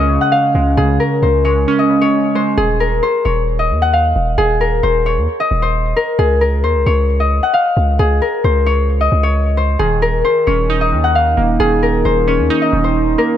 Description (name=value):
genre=hip hop, trap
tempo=133 BPM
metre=4/4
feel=half-time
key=unclear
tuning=A4 = 445 Hz
part: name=concert harp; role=melody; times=0.0-13.4 s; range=Ab4 to Gb5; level=-15 LUFS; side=left 2 dB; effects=tape echo
part: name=glassy digital keys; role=accompaniment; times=0.0-2.6, 9.8-13.4 s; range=Db3 to Eb4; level=-16 LUFS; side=right 3 dB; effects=chorus
part: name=long sustained 808-style bass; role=bass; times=0.0-13.2 s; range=Eb1 to Eb2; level=-16 LUFS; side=equal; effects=none
room=light reverb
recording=none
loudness=-12 LUFS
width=side -10 dB against mid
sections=0.0-2.6 A section; 2.6-13.4 B section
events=none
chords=0.0 Db; 2.6 Eb7sus2; 6.2 Db; 9.8 Eb5